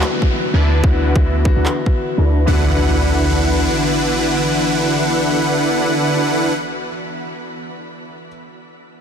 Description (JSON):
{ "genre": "future bass", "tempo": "146 BPM", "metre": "4/4", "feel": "swing 56% on 16ths, half-time", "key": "D major", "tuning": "A4 = 440 Hz", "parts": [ { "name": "warm grand piano", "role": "accompaniment", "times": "0.0-8.3 s", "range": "D3 to F#4", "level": "-26 LUFS", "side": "left 5 dB", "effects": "sidechain pumping, ping-pong delay" }, { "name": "ethereal airy pad", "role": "sustained chords", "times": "0.1-6.5 s", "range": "E3 to F#4", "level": "-27 LUFS", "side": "equal", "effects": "ensemble chorus, built-in reverb, sidechain pumping" }, { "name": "concert harp", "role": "arpeggios", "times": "0.0-1.9 s", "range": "none", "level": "barely audible", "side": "none", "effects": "none" }, { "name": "supersaw chords", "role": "riff", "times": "0.0-6.5 s", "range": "D3 to A5", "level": "-18 LUFS", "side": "equal", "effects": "sidechain pumping, low-pass filter, ping-pong delay" }, { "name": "warm 808-style bass", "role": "bass", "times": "0.0-3.7 s", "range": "D2", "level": "-16 LUFS", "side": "equal", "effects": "tube saturation, sidechain pumping" }, { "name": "electronic handclaps", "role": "drums", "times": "0.0-1.7 s", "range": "none", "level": "-28 LUFS", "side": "right 1 dB", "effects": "overdrive" }, { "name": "downlifter and impact", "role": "sound effects", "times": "0.0-6.9 s", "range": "none", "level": "-27 LUFS", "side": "equal", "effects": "none" }, { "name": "electronic kick drum", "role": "drums", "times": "0.2-2.0 s", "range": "none", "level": "-15 LUFS", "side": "equal", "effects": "overdrive" } ], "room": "light reverb, digital ambience", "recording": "dense, heavily limited modern master", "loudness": "-14 LUFS", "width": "side -7 dB against mid", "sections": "0.0-2.5 A section; 2.5-5.8 B section", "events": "filter sweep on supersaw synth 0.0-2.5; filter sweep on ambient pad 0.0-2.5", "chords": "0.0 D69", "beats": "0.01 0.42 | 0.83 1.25 1.66 2.07 | 2.48 2.89 3.30 3.71 | 4.12 4.53 4.95 5.36" }